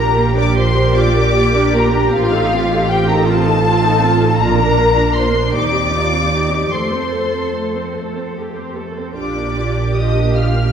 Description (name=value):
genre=classical, slow romantic movement for string orchestra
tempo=48-54 BPM (dotted quarters)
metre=6/8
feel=rubato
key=Bb major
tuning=A4 = 440 Hz
part: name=muted studio violin section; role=melody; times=0.0-10.7 s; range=F5 to F6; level=-19 LUFS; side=left 3 dB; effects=none
part: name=muted studio violin section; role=second line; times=0.0-10.7 s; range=F4 to F5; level=-22 LUFS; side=left 2 dB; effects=none
part: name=muted symphonic viola section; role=accompaniment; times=0.0-10.7 s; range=A3 to C5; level=-20 LUFS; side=right 2 dB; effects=none
part: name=muted studio cello section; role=bass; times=0.0-10.7 s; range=D4 to A4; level=-22 LUFS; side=right 1 dB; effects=none
part: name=muted studio double bass section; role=bass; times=0.0-10.7 s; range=A1 to F2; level=-18 LUFS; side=right 2 dB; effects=none
room=wet scoring stage reverb, RT60 1.5 s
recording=heard from further back in the room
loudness=-13 LUFS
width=side -8 dB against mid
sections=0.0-10.7 A section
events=none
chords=0.0 Bb; 2.1 F7/A; 4.4 Bb; 5.5 Cm/Eb; 6.7 F; 9.2 Bb